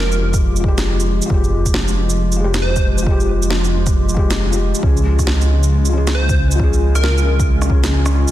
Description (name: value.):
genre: future garage.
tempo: 136 BPM.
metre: 4/4.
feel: swing 63% on 16ths.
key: F minor.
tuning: A4 = 439 Hz.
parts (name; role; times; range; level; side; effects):
plucky unison lead; melody; 0.0-2.9, 6.1-7.4 s; Bb4 to C5; -25 LUFS; equal; phaser, vintage 12-bit sampler grit, analog delay.
felt-muted upright piano; accompaniment; 0.0-8.3 s; F3 to Ab4; -24 LUFS; left 3 dB; vintage 12-bit sampler grit, sidechain pumping, tape echo.
warbly tape-like pad; sustained chords; 0.0-8.3 s; Db3 to G4; -24 LUFS; left 1 dB; chorus, built-in reverb, sidechain pumping.
dark detuned saw bass; bass; 0.0-8.3 s; F1 to Db2; -16 LUFS; equal; tube saturation, sidechain pumping.
electronic shaker, snare drum and rim click; drums; 0.1-8.3 s; none; -23 LUFS; right 1 dB; none.
electronic kick drum; drums; 0.3-7.8 s; none; -17 LUFS; equal; none.
room: little or no reverb.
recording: dense, heavily limited modern master.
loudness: -13 LUFS.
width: side -13 dB against mid.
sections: 0.0-8.3 A section.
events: none.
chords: 0.0 Fmadd9; 4.8 Db.